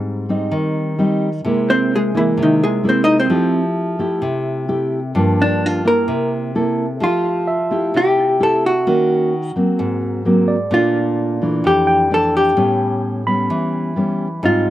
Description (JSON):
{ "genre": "bossa nova", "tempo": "129 BPM", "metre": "4/4", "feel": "straight", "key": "F major", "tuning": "A4 = 440 Hz", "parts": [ { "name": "nylon-string guitar", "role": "accompaniment", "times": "0.0-14.7 s", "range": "F2 to A4", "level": "-18 LUFS", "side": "equal", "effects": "none" }, { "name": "vintage hollow-body jazz guitar", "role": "melody", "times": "1.7-14.7 s", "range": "D#3 to D#5", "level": "-16 LUFS", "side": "equal", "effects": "slapback echo" }, { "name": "barky tine electric piano", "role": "accompaniment", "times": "7.5-14.4 s", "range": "D5 to B5", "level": "-24 LUFS", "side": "right 2 dB", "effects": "overdrive, slapback echo" } ], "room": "little or no reverb", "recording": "recorded outdoors, with no room sound", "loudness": "-15 LUFS", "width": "side -13 dB against mid", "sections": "0.0-7.0 A section; 7.0-14.7 B section", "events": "hollow-body jazz guitar solo 0.0-7.0", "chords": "0.0 Abmaj7; 1.4 C7alt; 3.3 Fmaj9; 5.2 Gm7; 6.1 C6; 7.0 Fmaj9; 8.9 Ebm7; 9.8 Ab9; 10.7 Bbmaj7#11; 12.6 A9" }